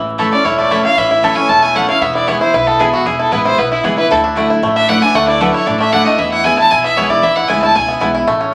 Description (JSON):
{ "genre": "bluegrass", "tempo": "230 BPM", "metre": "4/4", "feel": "straight", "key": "E mixolydian", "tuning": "A4 = 440 Hz", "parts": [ { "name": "picked steel-string acoustic guitar", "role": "accompaniment", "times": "0.0-8.5 s", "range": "E2 to E4", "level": "-24 LUFS", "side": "equal", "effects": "none" }, { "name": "bluegrass banjo", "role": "arpeggios", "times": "0.0-8.5 s", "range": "E3 to A4", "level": "-17 LUFS", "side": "equal", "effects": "none" }, { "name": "upright bass", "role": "bass", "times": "0.0-8.5 s", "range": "E1 to E2", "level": "-31 LUFS", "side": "equal", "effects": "none" }, { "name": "mandolin", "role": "stabs", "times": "0.2-8.1 s", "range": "A3 to A5", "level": "-24 LUFS", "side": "equal", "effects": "none" }, { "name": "clear fiddle", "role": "melody", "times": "0.3-8.0 s", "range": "E4 to A5", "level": "-17 LUFS", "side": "equal", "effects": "none" } ], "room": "wet large studio reverb, RT60 0.9 s", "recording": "vinyl crackle", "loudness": "-13 LUFS", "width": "mono", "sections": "0.0-8.3 A section", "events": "fiddle solo 0.0-8.5", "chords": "0.0 A; 2.0 E; 4.1 Dadd9; 6.2 E" }